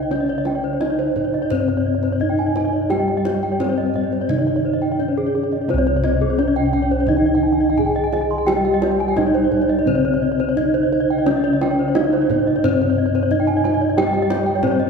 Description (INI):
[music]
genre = Balinese gamelan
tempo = 86 BPM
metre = 4/4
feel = straight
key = C pelog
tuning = A4 = 439 Hz
[part]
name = gamelan-type bronze metallophone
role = melody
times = 0.0-14.9 s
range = C4 to Ab4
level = -20 LUFS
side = left 1 dB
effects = none
[part]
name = gamelan-type bronze metallophone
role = accompaniment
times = 0.0-14.9 s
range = C3 to G3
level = -29 LUFS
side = right 1 dB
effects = none
[part]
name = gamelan-type bronze metallophone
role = arpeggios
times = 0.0-14.9 s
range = Ab4 to Ab5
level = -25 LUFS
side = left 4 dB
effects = none
[part]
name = gamelan-type bronze metallophone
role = arpeggios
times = 0.0-14.9 s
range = Ab4 to C6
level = -25 LUFS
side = right 6 dB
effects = none
[part]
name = gamelan-type bossed gongs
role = bass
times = 0.0-14.9 s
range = C2 to G4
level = -24 LUFS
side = equal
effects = none
[part]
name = kendang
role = percussion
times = 0.1-14.9 s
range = none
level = -28 LUFS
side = right 4 dB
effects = none
[sound]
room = wet church reverb, RT60 3.1 s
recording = recorded in a church or concert hall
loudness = -16 LUFS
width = side -5 dB against mid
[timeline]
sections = 0.0-14.9 A section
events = none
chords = none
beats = | 0.10 0.80 1.50 2.20 | 2.90 3.59 4.29 4.99 | 5.69 6.38 7.08 7.78 | 8.48 9.18 9.87 10.57 | 11.27 11.96 12.64 13.31 | 13.98 14.63